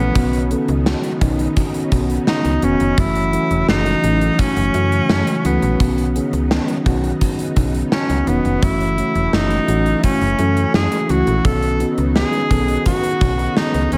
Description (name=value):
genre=1980s-style pop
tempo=85 BPM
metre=4/4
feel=straight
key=unclear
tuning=A4 = 440 Hz
part: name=clear tenor saxophone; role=melody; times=0.0-14.0 s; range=B3 to A4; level=-23 LUFS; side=equal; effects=none
part: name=mellow FM electric piano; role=accompaniment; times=0.0-14.0 s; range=D#3 to A4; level=-22 LUFS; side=equal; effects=chorus
part: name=string machine, violins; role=sustained chords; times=0.0-14.0 s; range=C#3 to D#4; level=-30 LUFS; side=equal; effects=ensemble chorus
part: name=slap-like FM bass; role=bass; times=0.0-14.0 s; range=E1 to F#2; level=-23 LUFS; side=equal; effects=none
part: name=gated 80s drum kit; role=drums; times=0.2-14.0 s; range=hi-hat, kick drum, snare drum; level=-22 LUFS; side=equal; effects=gated reverb
room=light reverb, small room reverb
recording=none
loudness=-17 LUFS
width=mono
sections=0.0-14.0 A section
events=none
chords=0.2 Badd9; 3.0 F#m7; 5.8 Badd9; 8.6 F#m7; 11.4 Badd9